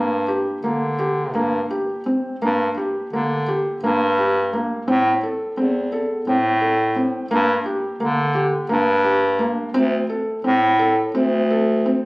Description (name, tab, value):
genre	contemporary instrumental, chamber music in an uneven meter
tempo	172 BPM (eighths)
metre	7/8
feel	straight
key	G dorian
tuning	A4 = 441 Hz
part	felt-muted upright piano	arpeggios	0.0-12.1 s	Bb3 to A4	-21 LUFS	equal	none
part	clear bass clarinet	bass	0.0-12.0 s	D2 to D3	-20 LUFS	equal	none
room	moderate recital hall reverb, RT60 1.3 s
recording	recorded on a phone in the room, club reverb, compression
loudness	-18 LUFS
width	side -24 dB against mid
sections	0.0-2.4 A section; 2.4-12.1 B section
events	none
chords	0.0 Gm; 4.9 Am; 7.3 Gm; 9.7 D5